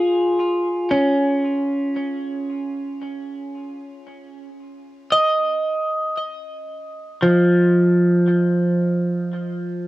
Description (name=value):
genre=ambient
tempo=free time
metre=none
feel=none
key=unclear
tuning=A4 = 442 Hz
part: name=clean electric guitar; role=solo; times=0.0-9.9 s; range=E#3 to D#5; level=-18 LUFS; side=equal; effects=tape echo
room=wet booth ambience, RT60 0.2 s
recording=home recording on cassette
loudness=-17 LUFS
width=side -17 dB against mid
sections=0.4-9.9 A section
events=none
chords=0.4 N.C.; 4.6 D#sus2; 8.8 N.C.